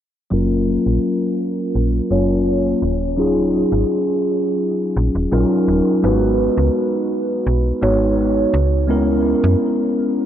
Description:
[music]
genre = vaporwave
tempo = 84 BPM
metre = 4/4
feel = straight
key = F# major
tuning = A4 = 441 Hz
[part]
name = mellow tine electric piano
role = accompaniment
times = 0.3-10.3 s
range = F#3 to C#5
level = -16 LUFS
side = equal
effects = analog chorus, analog delay
[part]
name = slap-like FM bass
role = bass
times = 0.3-9.6 s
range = D#1 to F#2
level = -19 LUFS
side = equal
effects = none
[sound]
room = wet huge ambient reverb, RT60 4.1 s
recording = dreamy mix soaked in reverb, cassette tape, low-pass filter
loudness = -15 LUFS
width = side -10 dB against mid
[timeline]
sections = 0.3-10.3 A section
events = filter sweep 0.3-10.3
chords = 0.3 F#maj7; 2.8 D#m9; 6.0 G#m7; 8.5 C#m7

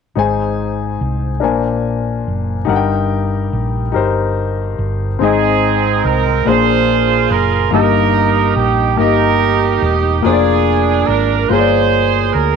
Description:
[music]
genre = slow gospel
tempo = 48 BPM (dotted quarters)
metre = 6/8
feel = straight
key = Ab major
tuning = A4 = 438 Hz
[part]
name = warm concert grand piano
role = accompaniment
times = 0.2-12.6 s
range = G2 to Ab5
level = -16 LUFS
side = left 9 dB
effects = none
[part]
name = hollow-body short-scale fingered electric bass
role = bass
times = 0.2-12.6 s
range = Fb1 to D2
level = -19 LUFS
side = right 1 dB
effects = none
[part]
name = warm horn section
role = melody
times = 5.2-12.6 s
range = C4 to C5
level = -14 LUFS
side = right 11 dB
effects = none
[sound]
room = moderate echo chamber reverb, RT60 1.4 s, small room ambience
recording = 1960s-style stereo with parts hard left and right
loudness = -12 LUFS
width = side -6 dB against mid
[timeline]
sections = 0.2-5.2 A section; 5.2-12.6 B section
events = none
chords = 0.2 Ab; 1.4 Bb9; 2.7 Eb/G; 5.2 Ab; 6.5 Bb9; 7.7 Eb/G; 10.2 Bb7/F

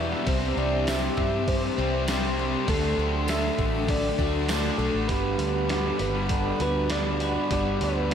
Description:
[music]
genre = rock, shoegaze and dream pop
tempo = 100 BPM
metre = 4/4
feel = straight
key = D mixolydian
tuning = A4 = 441 Hz
[part]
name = soft struck synth lead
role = melody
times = 0.0-8.1 s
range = A4 to E5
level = -31 LUFS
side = equal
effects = chorus, ping-pong delay
[part]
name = evolving wavetable pad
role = sustained chords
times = 0.0-8.1 s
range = G4 to E6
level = -35 LUFS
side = left 2 dB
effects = phaser, built-in reverb
[part]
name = picked twelve-string acoustic guitar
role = arpeggios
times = 0.0-8.1 s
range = E3 to G4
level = -36 LUFS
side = left 6 dB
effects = lush chorus, ping-pong delay
[part]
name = electric guitar through a small old amp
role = riff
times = 0.0-8.1 s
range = C3 to C5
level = -32 LUFS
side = right 7 dB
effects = reverse reverb
[part]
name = overdriven electric guitar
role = riff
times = 0.0-8.1 s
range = E2 to D4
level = -32 LUFS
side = equal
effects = analog chorus
[part]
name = thick fuzz guitar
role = riff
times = 0.0-8.1 s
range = E2 to D4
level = -31 LUFS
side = left 6 dB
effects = distortion, analog chorus
[part]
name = vintage muted fingered electric bass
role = bass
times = 0.0-8.1 s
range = G1 to G2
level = -30 LUFS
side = equal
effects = none
[part]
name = gated 80s digital drum machine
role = drums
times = 0.1-8.1 s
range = hi-hat, kick drum, snare drum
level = -31 LUFS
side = right 1 dB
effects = gated reverb, gated reverb snare
[part]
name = tambourine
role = percussion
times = 0.9-4.6 s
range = none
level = -45 LUFS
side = right 11 dB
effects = none
[sound]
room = wet lush hall reverb, RT60 2.7 s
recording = dreamy mix soaked in reverb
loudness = -23 LUFS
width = side -8 dB against mid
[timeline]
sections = 0.0-5.1 A section; 5.1-8.1 B section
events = none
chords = 0.3 Cadd9; 2.7 D7; 5.1 Gmaj7

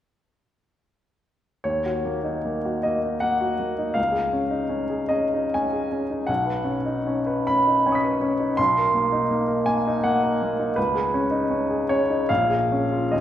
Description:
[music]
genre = classical, impressionist solo piano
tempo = 68-85 BPM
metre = 3/4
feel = rubato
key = Eb minor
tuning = A4 = 440 Hz
[part]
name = clear baby grand piano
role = solo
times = 1.6-13.2 s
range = Bb1 to B6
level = -20 LUFS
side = equal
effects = none
[sound]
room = wet concert hall reverb, RT60 1.8 s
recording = heard from further back in the room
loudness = -21 LUFS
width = side -11 dB against mid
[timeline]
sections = 1.6-13.2 A section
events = none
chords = 1.6 Ebm7; 4.0 Dbadd9; 6.3 B69; 8.6 Ebm6/Cb; 10.8 Dbsus2; 12.3 Bbm7

